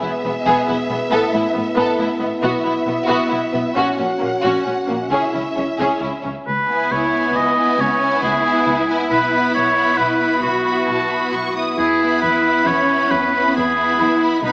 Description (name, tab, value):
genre	cinematic, heroic adventure film score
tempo	135 BPM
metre	3/4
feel	straight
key	E major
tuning	A4 = 440 Hz
part	warm symphonic violin section	melody	0.0-14.5 s	E5 to D#6	-26 LUFS	equal	none
part	warm symphonic violin section	second line	0.0-14.5 s	A#3 to A4	-23 LUFS	equal	none
part	rich symphonic viola section	accompaniment	0.0-14.5 s	B3 to C#4	-23 LUFS	equal	none
part	warm French horn section	sustained chords	0.0-6.2 s	B3 to G#4	-22 LUFS	equal	none
part	dark studio double bass section	bass	0.0-14.5 s	E1 to E2	-31 LUFS	equal	none
part	warm symphonic cello section	bass	0.0-14.5 s	E2 to F#4	-22 LUFS	equal	none
part	clear oboe	second line	6.5-14.5 s	F#4 to D#5	-17 LUFS	equal	none
room	moderate scoring stage reverb, RT60 2.0 s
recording	small speaker sound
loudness	-15 LUFS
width	side -35 dB against mid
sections	0.0-6.5 A section; 6.5-14.5 B section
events	build-up 0.0-6.5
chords	0.0 E; 1.1 Asus2; 2.4 Bsus4; 3.8 F#/A#; 5.1 C#m; 6.5 C#m7; 9.1 Bsus4; 11.8 E